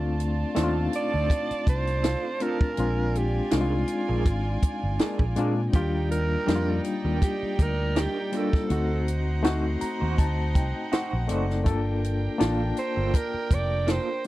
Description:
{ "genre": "lush 1970s-style soul", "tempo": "81 BPM", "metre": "4/4", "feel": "swing 54% on 16ths", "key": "unclear", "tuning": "A4 = 442 Hz", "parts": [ { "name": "warm studio violin section", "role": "second line", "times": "0.0-14.3 s", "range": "D4 to A5", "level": "-36 LUFS", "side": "right 2 dB", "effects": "none" }, { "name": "bright reed electric piano", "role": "accompaniment", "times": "0.0-14.3 s", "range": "G3 to Bb5", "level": "-29 LUFS", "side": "left 3 dB", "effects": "overdrive, fast tremolo" }, { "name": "fingered electric bass", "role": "bass", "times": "0.0-14.0 s", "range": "F1 to Bb2", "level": "-27 LUFS", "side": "equal", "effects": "none" }, { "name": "compact cocktail drum kit", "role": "drums", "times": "0.2-14.3 s", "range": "hi-hat, kick drum, snare drum", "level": "-24 LUFS", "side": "equal", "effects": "none" }, { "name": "electric guitar through a small old amp", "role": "riff", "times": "0.6-14.1 s", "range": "Bb3 to C5", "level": "-32 LUFS", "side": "right 6 dB", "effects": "tremolo" }, { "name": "raspy alto saxophone", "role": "melody", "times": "1.0-14.3 s", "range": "F4 to D5", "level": "-30 LUFS", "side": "right 3 dB", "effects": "none" }, { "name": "bright trombone section", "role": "stabs", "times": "5.0-5.6 s", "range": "Ab3 to D4", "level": "-32 LUFS", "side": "left 7 dB", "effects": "none" } ], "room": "little or no reverb", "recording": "dry, close 1970s-style studio recording", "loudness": "-23 LUFS", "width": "side -16 dB against mid", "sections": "0.0-14.3 A section", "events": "band accent 2.8-5.7; reed electric piano fill 9.4-11.7", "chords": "0.0 Dm7; 2.8 Bb7; 5.7 Ebmaj7; 8.7 D7b9; 11.7 Gm9" }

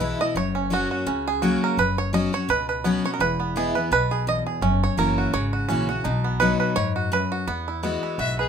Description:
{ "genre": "bluegrass", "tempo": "169 BPM", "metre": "4/4", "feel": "swing 56% on 8ths", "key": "unclear", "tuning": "A4 = 439 Hz", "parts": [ { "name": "bluegrass banjo", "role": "melody", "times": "0.0-8.5 s", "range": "B3 to D#5", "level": "-24 LUFS", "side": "right 5 dB", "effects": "none" }, { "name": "picked steel-string acoustic guitar", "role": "accompaniment", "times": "0.0-8.5 s", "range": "E2 to F#4", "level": "-25 LUFS", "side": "left 3 dB", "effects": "none" }, { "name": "upright bass", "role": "bass", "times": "0.0-8.5 s", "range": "E1 to F#2", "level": "-28 LUFS", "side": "equal", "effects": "none" }, { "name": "clear fiddle", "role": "melody", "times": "8.2-8.5 s", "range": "G#4 to E5", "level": "-26 LUFS", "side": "left 3 dB", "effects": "none" } ], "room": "light reverb", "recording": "minimal, uncompressed stereo recording", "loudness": "-21 LUFS", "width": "side -7 dB against mid", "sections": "0.0-7.5 A section; 7.5-8.5 A section", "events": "five-string banjo solo 0.0-7.5; fiddle solo 7.5-8.5", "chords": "0.4 F#; 1.8 F#sus4; 3.2 E; 4.6 F#7; 6.0 B; 7.5 Eadd9" }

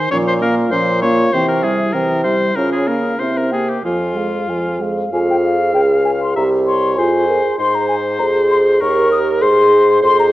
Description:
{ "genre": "quick classical-period movement for wind quintet", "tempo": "98 BPM", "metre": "2/4", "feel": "rubato", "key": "F minor", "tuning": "A4 = 440 Hz", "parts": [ { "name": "mellow hollow concert flute", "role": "melody", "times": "0.0-10.3 s", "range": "Db5 to Eb6", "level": "-20 LUFS", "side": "left 3 dB", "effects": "none" }, { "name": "clear oboe", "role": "second line", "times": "0.0-10.3 s", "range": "F4 to F5", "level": "-21 LUFS", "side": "left 2 dB", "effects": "none" }, { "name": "dark French horn", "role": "accompaniment", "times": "0.0-10.3 s", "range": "Eb3 to Bb4", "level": "-18 LUFS", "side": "equal", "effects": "none" }, { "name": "dark clarinet", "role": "accompaniment", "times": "0.0-10.3 s", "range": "C4 to Ab4", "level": "-21 LUFS", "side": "right 4 dB", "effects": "none" }, { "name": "clear bassoon", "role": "bass", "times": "0.1-10.3 s", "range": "C2 to Db3", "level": "-20 LUFS", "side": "right 1 dB", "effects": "none" } ], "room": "moderate scoring stage reverb, RT60 1.6 s", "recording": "worn, warbling old tape, cassette tape, warbly pitch drift", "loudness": "-13 LUFS", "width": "side -15 dB against mid", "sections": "0.0-5.1 A section; 5.1-10.3 A section", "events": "none", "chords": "0.1 Bbm; 1.3 C; 2.6 Bbm/Db; 3.2 C7; 3.8 Fm; 6.4 C; 7.0 Fm; 8.8 Eb7; 9.4 Ab" }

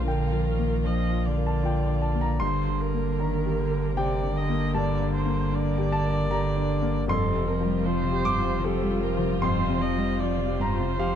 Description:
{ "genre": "neoclassical piano and strings", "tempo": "77 BPM", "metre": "3/4", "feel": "rubato", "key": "unclear", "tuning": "A4 = 440 Hz", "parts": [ { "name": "muted cello", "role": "second line", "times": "0.0-11.2 s", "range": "G2 to G3", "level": "-29 LUFS", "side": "right 5 dB", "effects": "none" }, { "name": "muted viola", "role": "accompaniment", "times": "0.0-11.2 s", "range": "A4 to Eb5", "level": "-32 LUFS", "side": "right 2 dB", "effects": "none" }, { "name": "warm concert grand piano", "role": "accompaniment", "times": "0.0-11.2 s", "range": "F2 to D6", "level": "-28 LUFS", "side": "left 4 dB", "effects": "none" }, { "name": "muted chamber string section", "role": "sustained chords", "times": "0.0-11.2 s", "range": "F3 to F5", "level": "-37 LUFS", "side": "right 3 dB", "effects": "none" }, { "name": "warm sub bass", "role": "bass", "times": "0.0-11.2 s", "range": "F1 to Bb1", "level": "-30 LUFS", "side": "equal", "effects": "none" } ], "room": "light reverb", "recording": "dark, warm production", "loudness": "-23 LUFS", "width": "side -9 dB against mid", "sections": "0.0-11.2 A section", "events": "none", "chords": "0.0 Bb; 2.4 Gm; 7.1 Fsus2" }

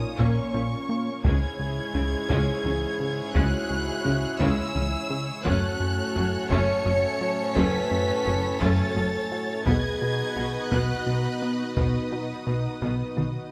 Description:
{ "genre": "cinematic, hybrid orchestral and electronic film score", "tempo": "57 BPM (dotted quarters)", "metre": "6/8", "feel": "straight", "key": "unclear", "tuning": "A4 = 440 Hz", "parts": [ { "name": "rich symphonic violin section", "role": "melody", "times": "0.0-13.5 s", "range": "Db6 to Db7", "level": "-37 LUFS", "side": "equal", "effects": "none" }, { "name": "warm symphonic violin section", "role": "second line", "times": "0.0-13.5 s", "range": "Ab4 to D#5", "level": "-38 LUFS", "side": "equal", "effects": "none" }, { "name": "chorused pulse-width pad", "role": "sustained chords", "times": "0.0-13.5 s", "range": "Ab3 to Db5", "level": "-37 LUFS", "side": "equal", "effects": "none" }, { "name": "dark French horn section", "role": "sustained chords", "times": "0.0-13.5 s", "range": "Db4 to Db5", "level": "-34 LUFS", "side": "equal", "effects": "none" }, { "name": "warm trombone section", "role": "sustained chords", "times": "0.0-13.5 s", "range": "Ab2 to Fb4", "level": "-38 LUFS", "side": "equal", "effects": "none" }, { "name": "thumb-piano-like synth pluck", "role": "arpeggios", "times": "0.0-13.4 s", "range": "Db3 to B4", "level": "-39 LUFS", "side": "equal", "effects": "none" }, { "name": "plucky analog bass", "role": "riff", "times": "0.0-13.4 s", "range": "Db2 to B3", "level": "-31 LUFS", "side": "equal", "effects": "none" }, { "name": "clear symphonic viola section", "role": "accompaniment", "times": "0.2-13.3 s", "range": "Ab3 to Gb4", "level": "-36 LUFS", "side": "equal", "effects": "none" }, { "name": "rich symphonic cello section", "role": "bass", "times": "0.2-13.3 s", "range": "Gb2 to Db3", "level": "-34 LUFS", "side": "equal", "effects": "none" }, { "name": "rich symphonic double bass section", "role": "bass", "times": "0.2-13.3 s", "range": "Gb1 to Db2", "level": "-33 LUFS", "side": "equal", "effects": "none" }, { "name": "solo taiko drums", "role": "drums", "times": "0.2-13.5 s", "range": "none", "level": "-34 LUFS", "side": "equal", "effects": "none" } ], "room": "moderate scoring stage reverb, RT60 2.0 s", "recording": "none", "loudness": "-26 LUFS", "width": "mono", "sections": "0.0-13.5 A section", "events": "drum fill 12.8-13.5", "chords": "0.0 Bbm; 1.2 Dbm; 5.5 Gbm; 9.7 B" }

